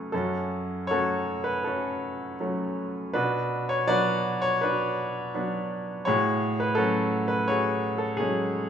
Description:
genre	classical, lyrical solo piano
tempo	78-85 BPM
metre	4/4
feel	rubato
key	F# minor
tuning	A4 = 436 Hz
part	clear grand piano	solo	0.0-8.7 s	F#2 to D5	-24 LUFS	equal	none
room	wet recital hall reverb, RT60 1.7 s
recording	recorded in a church or concert hall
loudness	-24 LUFS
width	side -8 dB against mid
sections	0.1-8.7 A section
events	none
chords	0.1 F#m; 3.1 Bm; 6.1 F#madd9/A

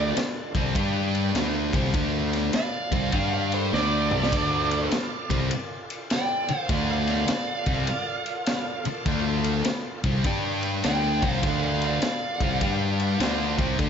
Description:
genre	blues rock power trio and southern rock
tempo	101 BPM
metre	4/4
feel	swing 65% on 8ths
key	D minor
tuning	A4 = 443 Hz
part	dark smooth lead guitar	melody	0.0-13.6 s	C5 to G5	-30 LUFS	right 2 dB	overdrive, analog delay
part	dark smooth lead guitar	second line	0.0-13.6 s	A4 to D5	-36 LUFS	right 4 dB	overdrive
part	bright tonewheel organ	sustained chords	0.0-13.9 s	D4 to A5	-38 LUFS	right 4 dB	slow rotary speaker, chorus vibrato
part	sludgy distorted guitar	riff	0.0-13.9 s	C3 to G4	-27 LUFS	left 1 dB	overdrive
part	fuzz fingered electric bass	bass	0.0-13.9 s	C2 to G2	-29 LUFS	equal	overdrive
part	raw garage drum kit	drums	0.2-13.9 s	crash cymbal, kick drum, ride cymbal, snare drum, toms	-29 LUFS	equal	none
room	moderate large studio reverb, RT60 1.1 s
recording	nothing above 7.7 kHz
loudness	-22 LUFS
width	side -7 dB against mid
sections	0.0-13.9 A section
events	drum fill 3.7-4.3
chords	0.0 Dm; 0.8 G5; 1.4 Dm; 3.1 G5; 3.7 Dm; 10.3 G5; 10.8 Dm; 12.6 G5; 13.2 Dm

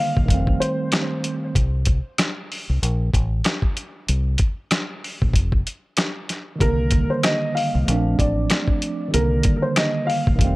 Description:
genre	hip hop, boom-bap hip-hop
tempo	95 BPM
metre	4/4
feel	swing 59% on 16ths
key	C dorian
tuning	A4 = 440 Hz
part	dark upright piano	melody	0.0-0.9, 6.6-10.6 s	Bb4 to F5	-25 LUFS	equal	analog delay
part	tine electric piano	accompaniment	0.0-1.6, 6.6-10.6 s	D3 to D4	-24 LUFS	right 2 dB	medium stereo tremolo, cassette tape
part	deep dub fingered electric bass	bass	0.2-10.6 s	F1 to C2	-21 LUFS	equal	none
part	dusty soul sampler-style drum kit	drums	0.2-10.6 s	hi-hat, kick drum, rim click, snare drum	-21 LUFS	equal	none
part	finger snaps	percussion	7.2-9.9 s	none	-33 LUFS	left 10 dB	none
room	light reverb, digital ambience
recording	none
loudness	-19 LUFS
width	side -20 dB against mid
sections	0.0-6.6 A section; 6.6-10.6 B section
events	none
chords	0.3 F7; 1.6 N.C.; 4.1 Bbsus2; 5.3 N.C.; 6.6 Cm7; 7.9 Bbmaj7; 9.1 Cm7

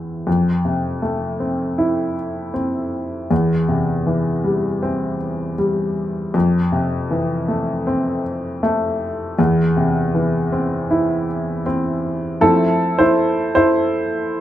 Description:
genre	pop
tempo	79 BPM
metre	4/4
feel	straight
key	F major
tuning	A4 = 441 Hz
part	warm upright piano	solo	0.0-14.4 s	E2 to C5	-17 LUFS	equal	none
room	wet large studio reverb, RT60 1.2 s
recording	band playing live in one room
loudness	-17 LUFS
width	side -12 dB against mid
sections	0.3-12.4 A section; 12.4-14.4 B section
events	upright piano solo 12.4-14.4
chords	0.3 Fmaj7; 3.3 C/E; 6.3 Fmaj7; 9.4 C/E; 12.4 Fmaj7

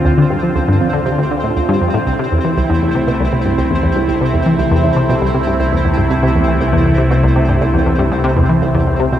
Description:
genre	ambient, sequencer-driven space music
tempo	119 BPM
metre	4/4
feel	straight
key	unclear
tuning	A4 = 440 Hz
part	phased analog pad	sustained chords	0.0-9.2 s	C3 to F4	-16 LUFS	equal	phaser, chorus, shimmer reverb
part	fat analog bass	bass	0.0-9.2 s	C2 to D2	-21 LUFS	equal	none
part	pulsing gated texture	texture	0.0-9.2 s	C4 to C5	-22 LUFS	left 1 dB	chorus, built-in reverb, shimmer reverb
part	tight sequenced synth	riff	0.1-9.2 s	C2 to F3	-15 LUFS	equal	chorus, vintage 12-bit sampler grit, analog delay
room	moderate plate reverb, RT60 3.6 s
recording	echo-heavy mix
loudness	-12 LUFS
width	side -11 dB against mid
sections	0.0-9.2 A section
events	none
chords	0.0 Dm7; 2.1 C6

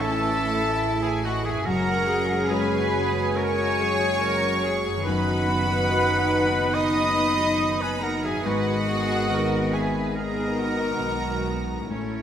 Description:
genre	cinematic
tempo	71 BPM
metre	4/4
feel	rubato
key	unclear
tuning	A4 = 440 Hz
part	clear studio violin section	melody	0.0-12.2 s	C#5 to D#6	-31 LUFS	left 1 dB	none
part	clear clarinet	second line	0.0-12.2 s	C#4 to D#5	-32 LUFS	left 1 dB	none
part	silver concert flute	second line	0.0-12.2 s	A4 to B5	-31 LUFS	equal	none
part	warm oboe	second line	0.0-12.2 s	C#4 to D#5	-31 LUFS	right 2 dB	none
part	warm symphonic violin section	second line	0.0-12.2 s	C#4 to D#5	-31 LUFS	left 2 dB	none
part	dark grand piano	accompaniment	0.0-12.2 s	F#2 to G#4	-30 LUFS	left 2 dB	none
part	rich chamber viola section	accompaniment	0.0-12.2 s	C#3 to D#4	-34 LUFS	right 2 dB	none
part	mellow French horn section	sustained chords	0.0-12.2 s	D#3 to F#4	-30 LUFS	left 3 dB	none
part	concert harp	arpeggios	0.0-12.2 s	F#2 to A#5	-36 LUFS	left 4 dB	none
part	warm symphonic cello section	bass	0.0-12.2 s	D#4 to B4	-31 LUFS	right 2 dB	none
part	warm symphonic double bass section	bass	0.0-12.2 s	F#1 to B1	-32 LUFS	right 4 dB	none
room	wet scoring stage reverb, RT60 2.0 s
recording	none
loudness	-21 LUFS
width	side -9 dB against mid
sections	0.0-12.2 A section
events	none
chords	0.0 A; 1.7 F#sus2; 5.1 B/F#; 8.5 G#madd9

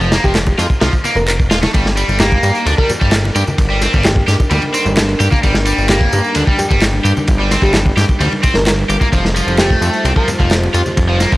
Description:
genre	breakbeat, breaks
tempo	130 BPM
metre	4/4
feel	straight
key	G minor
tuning	A4 = 441 Hz
part	cranked stack guitar	riff	0.0-11.4 s	F3 to G4	-18 LUFS	equal	overdrive, spring reverb
part	fat analog bass	bass	0.0-11.4 s	Eb1 to G2	-16 LUFS	equal	none
part	electronic tambourine and handclaps	drums	0.0-11.4 s	none	-25 LUFS	equal	overdrive
part	crunchy breakbeat drum kit	drums	0.1-11.4 s	kick drum, ride cymbal, snare drum	-16 LUFS	equal	none
part	congas	percussion	0.1-11.3 s	none	-25 LUFS	left 1 dB	none
part	bell-like FM electric piano	melody	0.2-10.3 s	G4 to Bb4	-23 LUFS	equal	chorus, telephone sound, analog delay
part	dark analog pad	sustained chords	2.1-11.4 s	G3 to C5	-24 LUFS	right 1 dB	chorus, sidechain pumping
room	light reverb, small room ambience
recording	dry, gritty hardware recording, transformer saturation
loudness	-11 LUFS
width	side -18 dB against mid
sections	0.0-11.4 A section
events	none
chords	0.0 F5; 1.7 Gm; 9.1 Fsus2

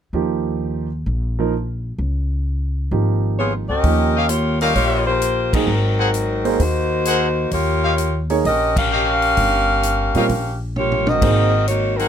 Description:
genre	jazz, big band swing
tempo	130 BPM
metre	4/4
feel	swing 68% on 8ths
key	Eb major, Eb mixolydian from 3.8 s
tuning	A4 = 439 Hz
part	clear baby grand piano	accompaniment	0.1-11.5 s	F3 to Eb5	-21 LUFS	right 6 dB	none
part	upright bass	bass	0.1-12.1 s	G1 to Bb2	-21 LUFS	equal	none
part	warm saxophone section	melody	3.4-12.1 s	Gb3 to F5	-19 LUFS	left 1 dB	none
part	swinging big-band drum kit	drums	3.8-12.1 s	crash cymbal, hi-hat, kick drum, toms	-25 LUFS	left 1 dB	none
part	clear trumpet section	stabs	4.2-12.1 s	G4 to Gb5	-21 LUFS	left 2 dB	none
room	little or no reverb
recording	close, detailed microphones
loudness	-16 LUFS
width	side -8 dB against mid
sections	0.1-3.8 A section; 3.8-12.1 B section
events	band accent 5.5, 8.7; drum fill 10.8-11.2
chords	0.1 Eb; 2.0 Dbadd9; 3.8 Eb9; 5.7 Ab9; 7.5 Eb9; 11.2 Ab9

